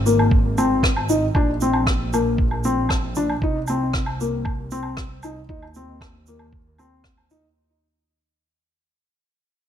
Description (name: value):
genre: piano and strings electronica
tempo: 116 BPM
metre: 4/4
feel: straight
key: unclear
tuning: A4 = 440 Hz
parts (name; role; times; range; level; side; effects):
- dark studio double bass section; bass; 0.0-7.5 s; Ab1 to Eb2; -26 LUFS; equal; sidechain pumping
- felt-muted upright piano; riff; 0.1-7.5 s; Bb3 to Eb4; -22 LUFS; left 2 dB; digital delay
- shaker, woodblock and rim click; drums; 0.1-7.4 s; none; -27 LUFS; right 1 dB; none
- electronic kick drum; drums; 0.3-7.1 s; none; -22 LUFS; right 1 dB; none
room: light reverb, small room reverb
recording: none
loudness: -18 LUFS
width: side -10 dB against mid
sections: 0.0-7.6 A section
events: drop 0.0-7.6; fade-out 0.0-7.6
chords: 0.0 Ab; 1.4 Bbadd9; 3.4 Cm7; 5.5 Eb5